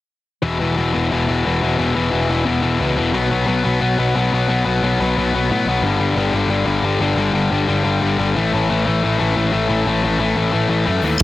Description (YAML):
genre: punk rock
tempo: 178 BPM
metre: 4/4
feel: straight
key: unclear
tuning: A4 = 441 Hz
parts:
  - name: distorted electric guitar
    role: riff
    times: 0.4-11.2 s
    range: E2 to B3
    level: -17 LUFS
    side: left 4 dB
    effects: overdrive
  - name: fuzz picked electric bass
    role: bass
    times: 0.4-11.2 s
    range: E1 to A2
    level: -21 LUFS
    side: right 1 dB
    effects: overdrive
  - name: overdriven electric guitar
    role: riff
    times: 11.2 s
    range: E3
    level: -28 LUFS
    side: right 13 dB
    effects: none
  - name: big rock drum kit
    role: drums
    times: 11.2 s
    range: hi-hat, kick drum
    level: -13 LUFS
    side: right 1 dB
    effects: none
room: little or no reverb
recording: heavily compressed radio sound, multiband compression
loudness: -16 LUFS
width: side -15 dB against mid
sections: 0.4-11.2 A section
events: none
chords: 0.4 E5; 3.1 B5; 5.8 G5; 8.4 A5